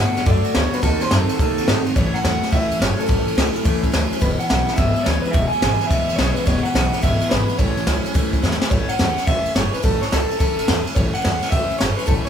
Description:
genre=rockabilly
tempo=213 BPM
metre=4/4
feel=swing 64% on 8ths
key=A major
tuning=A4 = 442 Hz
part: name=electric guitar through a small old amp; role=melody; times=0.0-12.3 s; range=A4 to G#5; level=-23 LUFS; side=right 1 dB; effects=none
part: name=picked steel-string acoustic guitar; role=accompaniment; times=0.0-12.3 s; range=E2 to F#4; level=-28 LUFS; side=left 3 dB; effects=none
part: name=electric guitar through a small old amp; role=riff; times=0.0-8.7 s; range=E2 to B#3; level=-25 LUFS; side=equal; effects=none
part: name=upright bass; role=bass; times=0.0-12.3 s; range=E1 to A2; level=-23 LUFS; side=equal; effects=none
part: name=jazz brush drum kit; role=drums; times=0.2-12.3 s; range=kick drum, ride cymbal, snare drum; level=-20 LUFS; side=equal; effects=none
room=light reverb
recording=band playing live in one room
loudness=-16 LUFS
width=side -8 dB against mid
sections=0.0-8.7 A section; 8.7-12.3 A section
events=drum fill 8.4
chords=0.0 D; 0.8 D#dim7; 2.0 A; 4.2 E; 7.6 A

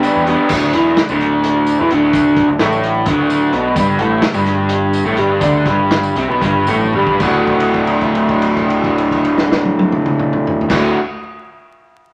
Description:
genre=psychedelic rock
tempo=220-259 BPM (eighths)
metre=7/8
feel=straight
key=D major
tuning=A4 = 442 Hz
part: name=mellow tonewheel organ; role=sustained chords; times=0.0-10.9 s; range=D3 to E6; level=-30 LUFS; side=equal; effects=none
part: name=raw garage guitar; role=riff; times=0.0-11.0 s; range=D2 to G4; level=-16 LUFS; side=equal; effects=overdrive
part: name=vintage drum kit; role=drums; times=0.0-10.8 s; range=crash cymbal, hi-hat, kick drum, snare drum, toms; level=-23 LUFS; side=equal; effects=none
part: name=tambourine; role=percussion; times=0.0-7.5 s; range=none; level=-41 LUFS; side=equal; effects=none
part: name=growling picked electric bass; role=bass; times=0.2-10.9 s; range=D1 to E2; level=-26 LUFS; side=equal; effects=overdrive
room=moderate large studio reverb, RT60 1.1 s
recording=vinyl crackle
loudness=-15 LUFS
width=mono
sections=0.5-7.2 A section; 7.2-11.0 B section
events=slowing down 3.8-7.2; drum fill 6.8-7.2; held note 7.2-10.7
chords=0.0 G; 0.5 D; 3.8 G5; 7.2 D

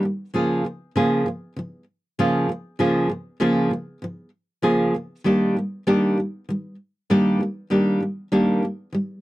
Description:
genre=pop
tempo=98 BPM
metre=4/4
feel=swing 60% on 16ths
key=unclear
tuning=A4 = 439 Hz
part: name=nylon-string guitar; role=solo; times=0.0-9.2 s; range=Db3 to Ab4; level=-19 LUFS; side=equal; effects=none
room=little or no reverb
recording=dry, close 1970s-style studio recording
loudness=-20 LUFS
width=side -17 dB against mid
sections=0.0-9.2 A section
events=none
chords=0.3 Db6; 5.3 Ebmaj7

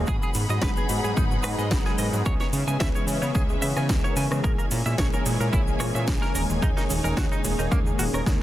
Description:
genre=nu-disco, nu disco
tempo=110 BPM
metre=4/4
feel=swing 54% on 16ths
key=G# minor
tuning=A4 = 441 Hz
part: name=warm analog pad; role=accompaniment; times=0.0-8.4 s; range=D#3 to A#4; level=-30 LUFS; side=left 1 dB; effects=chorus, sidechain pumping, digital delay
part: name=warm studio string section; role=sustained chords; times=0.0-8.4 s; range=A#3 to B5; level=-34 LUFS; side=left 1 dB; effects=sidechain pumping
part: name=fat analog bass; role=bass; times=0.0-8.4 s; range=D#1 to C#3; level=-27 LUFS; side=equal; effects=sidechain pumping
part: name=analog pluck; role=arpeggios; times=0.1-8.3 s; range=F#3 to C#4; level=-36 LUFS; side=right 3 dB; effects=none
part: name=direct-recorded clean electric guitar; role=riff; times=0.1-8.2 s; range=A#3 to G#5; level=-33 LUFS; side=right 2 dB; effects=analog chorus, vintage 12-bit sampler grit, digital delay
part: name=electronic kick drum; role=drums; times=0.1-8.4 s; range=none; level=-25 LUFS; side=equal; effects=overdrive
part: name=house drum kit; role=drums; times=0.1-8.4 s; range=cabasa, hi-hat, rim click, snare drum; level=-32 LUFS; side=equal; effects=overdrive
part: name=egg shaker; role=percussion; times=0.1-8.4 s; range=none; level=-42 LUFS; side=left 1 dB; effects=none
room=little or no reverb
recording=dense, heavily limited modern master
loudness=-22 LUFS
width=side -14 dB against mid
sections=0.0-8.4 A section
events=drum fill 8.3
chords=0.1 G#m7; 2.3 C#m7; 4.4 A#m7b5; 6.4 D#7sus4

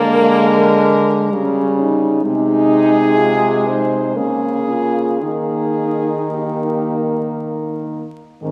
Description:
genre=classical, lyrical piece for horn quartet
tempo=55-66 BPM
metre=3/4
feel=rubato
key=unclear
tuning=A4 = 440 Hz
part: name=warm French horn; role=melody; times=0.0-8.5 s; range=C4 to C5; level=-22 LUFS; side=equal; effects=none
part: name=mellow French horn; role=second line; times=0.0-8.5 s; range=Bb3 to F4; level=-22 LUFS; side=equal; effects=none
part: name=mellow French horn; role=accompaniment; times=0.0-8.5 s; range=Eb3 to Bb3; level=-22 LUFS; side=equal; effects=none
part: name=clear French horn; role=bass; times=0.0-8.5 s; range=Ab2 to Eb3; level=-22 LUFS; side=equal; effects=none
room=wet concert hall reverb, RT60 2.0 s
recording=recorded in a church or concert hall, vinyl crackle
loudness=-16 LUFS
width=mono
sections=0.0-8.4 A section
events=none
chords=0.0 Bb7/D; 1.3 Eb7/Db; 2.2 Ab/C; 4.2 Bbm/Db; 5.2 Eb

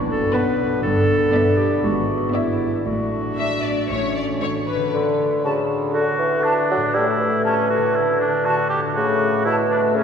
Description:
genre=cinematic, playful, whimsical film cue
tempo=119 BPM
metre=4/4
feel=straight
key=D major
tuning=A4 = 441 Hz
part: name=warm French horn section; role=sustained chords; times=0.0-10.0 s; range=D3 to D4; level=-25 LUFS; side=left 2 dB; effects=none
part: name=concert harp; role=arpeggios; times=0.0-10.0 s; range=G2 to D5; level=-28 LUFS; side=left 3 dB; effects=none
part: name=dark studio double bass section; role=bass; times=0.0-4.3 s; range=F#1 to A1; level=-29 LUFS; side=right 3 dB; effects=none
part: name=warm studio cello section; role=bass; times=0.0-4.3 s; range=F#2 to A2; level=-31 LUFS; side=right 2 dB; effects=none
part: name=warm clarinet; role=second line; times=0.1-9.6 s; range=E4 to B4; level=-25 LUFS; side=equal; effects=none
part: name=warm studio violin section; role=melody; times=0.3-4.9 s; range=B4 to F#5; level=-29 LUFS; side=left 4 dB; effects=none
part: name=clear studio violin section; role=second line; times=0.3-4.8 s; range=B4 to D5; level=-37 LUFS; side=equal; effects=none
part: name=warm studio viola section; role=accompaniment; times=0.3-4.8 s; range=A3 to B3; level=-32 LUFS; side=right 1 dB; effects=none
part: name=mellow bassoon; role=accompaniment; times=4.9-10.0 s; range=B2 to G3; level=-20 LUFS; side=equal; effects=none
part: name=bright large flute ensemble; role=second line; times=5.4-9.5 s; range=A5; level=-28 LUFS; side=equal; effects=none
part: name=mellow oboe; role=second line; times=5.9-10.0 s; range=C#4 to G4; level=-22 LUFS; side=right 1 dB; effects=none
room=wet cathedral reverb, RT60 5.1 s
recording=recorded in a church or concert hall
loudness=-17 LUFS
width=side -7 dB against mid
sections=0.0-4.9 A section; 4.9-10.0 B section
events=none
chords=0.0 Bm; 0.8 Em7/G; 1.8 E7/G#; 2.9 D/A; 3.9 A; 4.9 D; 9.0 A

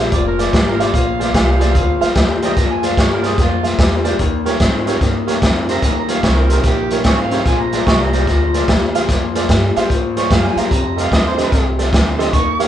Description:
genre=electric blues shuffle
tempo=147 BPM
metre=4/4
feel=swing 65% on 8ths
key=Bb mixolydian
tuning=A4 = 440 Hz
part: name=clear concert grand piano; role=accompaniment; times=0.0-12.7 s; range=F4 to F5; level=-22 LUFS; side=right 5 dB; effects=none
part: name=electric guitar through a small old amp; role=riff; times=0.0-12.7 s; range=F2 to C4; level=-20 LUFS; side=left 5 dB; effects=none
part: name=upright bass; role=bass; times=0.0-12.7 s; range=F1 to Ab2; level=-21 LUFS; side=equal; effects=none
part: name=overdriven harmonica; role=second line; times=0.1-12.6 s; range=F4 to Db6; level=-22 LUFS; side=right 5 dB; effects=none
part: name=crunchy breakbeat drum kit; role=drums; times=0.1-12.7 s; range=hi-hat, kick drum, snare drum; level=-16 LUFS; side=equal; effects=none
room=moderate large studio reverb, RT60 0.8 s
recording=band playing live in one room, nothing above 10.7 kHz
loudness=-13 LUFS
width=side -11 dB against mid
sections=0.0-12.7 A section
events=harmonica solo 0.0-12.7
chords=0.0 Bb7; 4.2 Eb7; 7.5 Bb7; 10.7 F7

